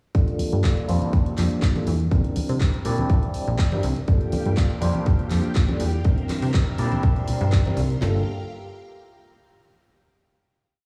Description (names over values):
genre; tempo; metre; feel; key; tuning
filtered disco house; 122 BPM; 4/4; swing 53% on 16ths; G dorian; A4 = 440 Hz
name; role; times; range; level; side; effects
overdriven tine electric piano; accompaniment; 0.1-8.2 s; G3 to D5; -30 LUFS; equal; fast tremolo, phaser, sidechain pumping, low-pass filter
plucky analog bass; bass; 0.1-8.2 s; G1 to C3; -25 LUFS; equal; sidechain pumping, low-pass filter
house drum kit; drums; 0.1-8.1 s; kick drum, snare drum; -23 LUFS; equal; none
punchy analog drum machine; drums; 0.1-8.0 s; handclaps, hi-hat; -38 LUFS; equal; sidechain pumping on hats
tube shaker and congas; percussion; 0.1-8.0 s; none; -31 LUFS; equal; sidechain pumping on perc, low-pass filter on perc
string machine, full ensemble; sustained chords; 4.1-8.2 s; G4 to C6; -40 LUFS; equal; phaser, ensemble chorus, sidechain pumping, low-pass filter
room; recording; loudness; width
digital ambience; played on a big sound system in a bare room, stone room reverb, small room ambience; -22 LUFS; mono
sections
0.2-8.0 groove; 8.0-10.0 final chord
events
filter sweep 0.2-8.0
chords
0.2 Gm7; 2.1 C7; 4.1 Gm7; 6.1 C7; 8.0 Gm7